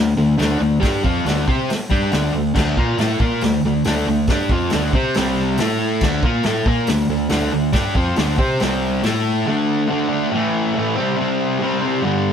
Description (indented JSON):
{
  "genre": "garage rock duo or trio",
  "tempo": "139 BPM",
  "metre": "4/4",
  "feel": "straight",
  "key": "D minor",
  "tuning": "A4 = 441 Hz",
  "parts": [
    { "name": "fuzz guitar", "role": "riff", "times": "0.0-12.3 s", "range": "G2 to C5", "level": "-18 LUFS", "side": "equal", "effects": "distortion" },
    { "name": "hollow-body short-scale fingered electric bass", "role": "bass", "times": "0.0-9.4 s", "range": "C2 to C3", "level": "-25 LUFS", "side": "right 1 dB", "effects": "none" },
    { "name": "vintage drum kit", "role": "drums", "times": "0.4-9.1 s", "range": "crash cymbal, hi-hat, kick drum, snare drum", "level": "-22 LUFS", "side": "equal", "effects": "none" }
  ],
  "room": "light reverb",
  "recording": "band playing live in one room",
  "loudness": "-16 LUFS",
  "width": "side -8 dB against mid",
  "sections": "0.0-9.5 A section; 9.5-12.3 B section",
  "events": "none",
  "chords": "0.0 Dm; 5.2 C5; 5.6 A5; 6.0 Dm; 8.6 C5; 9.0 A5; 9.5 D5; 10.3 A5; 11.0 C5",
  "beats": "0.40 | 0.83 1.26 1.70 2.13 | 2.56 3.00 3.43 3.86 | 4.29 4.72 5.16 5.59 | 6.02 6.45 6.88 7.32 | 7.75 8.18 8.61 9.04 | 9.47 9.90 10.33 10.76 | 11.19 11.62 12.05"
}